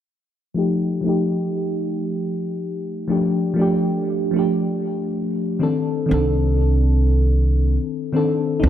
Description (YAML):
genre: chillout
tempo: 95 BPM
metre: 4/4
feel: swing 54% on 16ths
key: unclear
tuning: A4 = 440 Hz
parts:
  - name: mellow FM electric piano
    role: accompaniment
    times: 0.5-8.7 s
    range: Eb3 to A4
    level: -20 LUFS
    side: moving between left 4 dB and right 2 dB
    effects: chorus, auto-pan, low-pass filter, digital delay
  - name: upright bass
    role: bass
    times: 6.1-8.7 s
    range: C2 to D2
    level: -16 LUFS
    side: right 1 dB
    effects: none
room: moderate plate reverb, RT60 3.4 s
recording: none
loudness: -18 LUFS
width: side -10 dB against mid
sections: 0.6-8.7 A section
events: filter sweep on FM electric piano 0.6-8.7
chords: 0.6 F9; 3.1 F69; 5.6 Cm69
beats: | 0.57 1.20 1.83 2.47 | 3.10 3.73 4.36 4.99 | 5.62 6.25 6.89 7.52 | 8.15